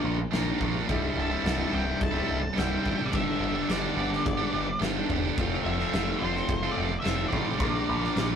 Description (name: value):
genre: quiet-loud alternative rock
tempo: 107 BPM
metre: 4/4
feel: straight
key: C major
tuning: A4 = 440 Hz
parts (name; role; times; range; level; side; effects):
- fuzz guitar; riff; 0.0-8.4 s; C2 to Bb3; -37 LUFS; right 1 dB; none
- overdriven semi-hollow guitar; riff; 0.0-8.4 s; C2 to Bb4; -31 LUFS; left 3 dB; none
- scooped high-gain guitar; riff; 0.0-8.4 s; C2 to Bb4; -31 LUFS; right 6 dB; distortion
- growling picked electric bass; bass; 0.0-8.3 s; C1 to Bb1; -32 LUFS; equal; overdrive
- big rock drum kit; drums; 0.3-8.3 s; crash cymbal, kick drum, snare drum; -32 LUFS; equal; none
- octave-fuzz lead guitar; melody; 1.2-8.4 s; C5 to A5; -34 LUFS; equal; distortion
room: moderate small room reverb, RT60 0.5 s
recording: rough rehearsal-room recording, tube saturation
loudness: -25 LUFS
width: side -8 dB against mid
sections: 0.0-8.4 A section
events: none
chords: 0.0 Bb; 0.9 C; 3.1 G; 5.4 F; 7.6 Bb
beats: 0.32 | 0.88 1.45 2.01 2.57 | 3.13 3.69 4.25 4.81 | 5.37 5.93 6.49 7.05 | 7.61 8.17